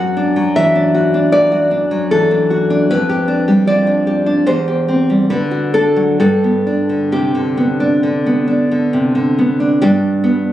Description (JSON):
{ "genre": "romantic piece for solo classical guitar", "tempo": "64-79 BPM", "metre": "4/4", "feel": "rubato", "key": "G major", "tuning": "A4 = 440 Hz", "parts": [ { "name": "nylon-string guitar", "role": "solo", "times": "0.0-10.5 s", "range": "E2 to F#5", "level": "-12 LUFS", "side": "equal", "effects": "none" } ], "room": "moderate recital hall reverb, RT60 1.8 s", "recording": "recorded on a phone in the room, club reverb, compression", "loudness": "-12 LUFS", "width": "side -12 dB against mid", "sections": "0.0-9.8 A section", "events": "none", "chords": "0.0 D/F#; 2.9 G7/F; 4.5 C/E; 5.3 D; 6.2 G" }